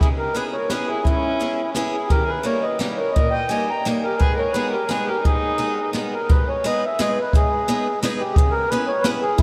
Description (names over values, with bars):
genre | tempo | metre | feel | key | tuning
musette waltz | 172 BPM | 3/4 | swing 53% on 8ths | G# harmonic minor | A4 = 438 Hz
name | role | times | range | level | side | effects
mellow accordion | melody | 0.0-9.4 s | E4 to A#5 | -25 LUFS | equal | none
dark violin | second line | 0.0-5.9 s | C#4 to G5 | -30 LUFS | equal | none
picked steel-string acoustic guitar | accompaniment | 0.0-9.4 s | G#2 to B4 | -29 LUFS | equal | none
jazz brush drum kit | drums | 0.0-9.4 s | hi-hat, kick drum, snare drum | -22 LUFS | equal | none
room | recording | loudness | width
wet huge ambient reverb, RT60 7.8 s | in a vast, echoing space | -21 LUFS | mono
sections
0.0-6.3 A section; 6.3-9.4 A section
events
none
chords
0.0 C#m7; 2.1 D#; 4.2 G#m; 8.4 C#m7